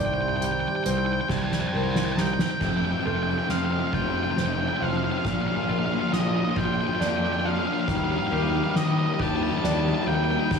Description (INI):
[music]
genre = post-rock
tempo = 46 BPM (dotted quarters)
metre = 6/8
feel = straight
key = unclear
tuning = A4 = 440 Hz
[part]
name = octave-fuzz lead guitar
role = melody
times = 0.0-10.6 s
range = Eb5 to A5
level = -29 LUFS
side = right 2 dB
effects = distortion, tape echo
[part]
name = warm analog pad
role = sustained chords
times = 0.0-10.6 s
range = C3 to A5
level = -35 LUFS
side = right 5 dB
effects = chorus
[part]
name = felt-muted upright piano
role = arpeggios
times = 0.0-10.5 s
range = A4 to F5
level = -35 LUFS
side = right 2 dB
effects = tape echo
[part]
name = twangy electric guitar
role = arpeggios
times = 0.0-10.6 s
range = F2 to G4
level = -34 LUFS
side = left 2 dB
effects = tape echo
[part]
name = fuzz picked electric bass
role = bass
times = 0.0-10.6 s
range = F1 to Eb3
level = -28 LUFS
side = right 1 dB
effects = overdrive
[part]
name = soft-mallet drum kit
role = drums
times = 0.4-10.6 s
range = crash cymbal, hi-hat, kick drum, ride cymbal, snare drum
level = -29 LUFS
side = equal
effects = none
[part]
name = raw garage guitar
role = riff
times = 2.6-10.6 s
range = F2 to G3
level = -28 LUFS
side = left 6 dB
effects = overdrive
[sound]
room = moderate large studio reverb, RT60 0.9 s, studio reverb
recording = small room ambience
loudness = -22 LUFS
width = side -6 dB against mid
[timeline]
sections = 0.0-2.6 A section; 2.6-10.6 B section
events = drum fill 1.3-2.6, 2.6-10.6; build-up 2.6-10.6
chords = 0.0 Cm; 2.6 F; 5.2 Bbmaj7; 7.9 Ebmaj7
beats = 1.30 | 2.62 3.93 | 5.25 6.57 | 7.88 9.20 | 10.51